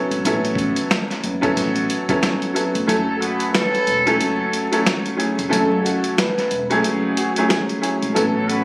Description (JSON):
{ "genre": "hip hop, boom-bap hip-hop", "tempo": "91 BPM", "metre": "4/4", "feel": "swing 58% on 16ths", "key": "F# minor", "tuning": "A4 = 440 Hz", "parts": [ { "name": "warm upright piano", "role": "accompaniment", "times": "0.0-8.6 s", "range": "F#3 to A4", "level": "-20 LUFS", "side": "equal", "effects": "high-pass filter, low-pass filter" }, { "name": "upright bass", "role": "bass", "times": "0.1-8.6 s", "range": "E1 to A1", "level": "-24 LUFS", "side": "equal", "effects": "none" }, { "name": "boom bap sampler-style drum kit", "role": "drums", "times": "0.1-8.6 s", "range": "hi-hat, kick drum, snare drum", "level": "-22 LUFS", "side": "equal", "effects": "none" }, { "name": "trumpet with bucket mute", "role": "melody", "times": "2.9-8.6 s", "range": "F#4 to B4", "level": "-24 LUFS", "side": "equal", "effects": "high-pass filter, low-pass filter, tape echo" }, { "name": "dark trumpet section", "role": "stabs", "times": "3.1-8.6 s", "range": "F#3 to B4", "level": "-23 LUFS", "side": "equal", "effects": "high-pass filter, low-pass filter, tape echo" } ], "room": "light reverb", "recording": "recorded on a phone in the room, club reverb, vinyl crackle", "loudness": "-17 LUFS", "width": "side -26 dB against mid", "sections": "0.0-2.9 A section; 2.9-8.6 B section", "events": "kick muted 2.9-8.6", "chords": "0.0 A69; 2.9 F#m9", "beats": "| 0.24 0.90 1.56 2.22 | 2.88 3.54 4.20 4.86 | 5.52 6.18 6.84 7.50 | 8.15" }